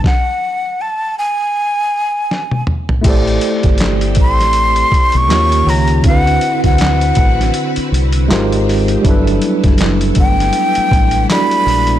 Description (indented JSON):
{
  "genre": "R&B, neo-soul",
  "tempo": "80 BPM",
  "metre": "4/4",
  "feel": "swing 59% on 16ths",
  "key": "A dorian",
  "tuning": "A4 = 438 Hz",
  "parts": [
    { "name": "tine electric piano", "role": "accompaniment", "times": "0.0-12.0 s", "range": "D3 to D5", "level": "-17 LUFS", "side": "right 2 dB", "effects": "medium stereo tremolo" },
    { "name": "boom bap sampler-style drum kit", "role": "drums", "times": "0.0-12.0 s", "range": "crash cymbal, handclaps, hi-hat, kick drum, snare drum, toms", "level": "-15 LUFS", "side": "equal", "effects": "none" },
    { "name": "breathy jazz flute", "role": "melody", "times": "0.1-12.0 s", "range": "F#5 to C#6", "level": "-15 LUFS", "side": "left 1 dB", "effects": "slapback echo" },
    { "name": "string machine, violins", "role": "sustained chords", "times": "3.0-12.0 s", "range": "D3 to B4", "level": "-24 LUFS", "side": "equal", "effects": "ensemble chorus" },
    { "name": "deep dub fingered electric bass", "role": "bass", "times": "3.0-12.0 s", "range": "F#1 to D#2", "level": "-16 LUFS", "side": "equal", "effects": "transformer saturation" }
  ],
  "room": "little or no reverb",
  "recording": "blown-out, overdriven recording, overdrive",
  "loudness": "-11 LUFS",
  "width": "side -12 dB against mid",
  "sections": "0.0-3.0 A section; 3.0-12.0 B section",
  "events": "stop 0.0-3.0; drum fill 2.3-3.0",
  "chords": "0.0 N.C.; 3.0 Am11; 5.3 D#9; 6.0 D13; 8.3 G#maj13; 9.0 Gmaj13"
}